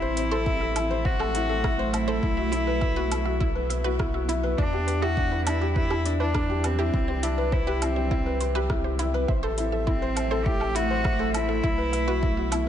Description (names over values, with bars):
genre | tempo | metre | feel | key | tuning
piano and strings electronica | 102 BPM | 4/4 | straight | unclear | A4 = 440 Hz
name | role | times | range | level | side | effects
warm cello | melody | 0.0-12.7 s | C4 to G4 | -30 LUFS | equal | none
granular cloud pad | sustained chords | 0.0-12.7 s | A3 to G5 | -33 LUFS | right 2 dB | built-in reverb
felt-muted upright piano | riff | 0.0-12.7 s | D4 to C5 | -29 LUFS | left 2 dB | tape echo
warm sub bass | bass | 0.0-12.7 s | A1 to E2 | -29 LUFS | equal | sidechain pumping
wide unison pluck | arpeggios | 0.2-12.6 s | D4 to E5 | -36 LUFS | right 4 dB | sidechain pumping, tape echo
deep house drum kit | drums | 0.2-12.6 s | hi-hat, rim click, woodblock | -35 LUFS | right 2 dB | none
electronic kick drum | drums | 0.5-12.3 s | none | -27 LUFS | equal | none
room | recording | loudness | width
light reverb | nothing above 10.8 kHz | -23 LUFS | side -10 dB against mid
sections
0.0-12.7 A section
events
none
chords
0.0 Am; 2.2 Bsus4; 4.6 Em7; 6.9 Cmaj7; 9.3 Am; 11.6 Bsus4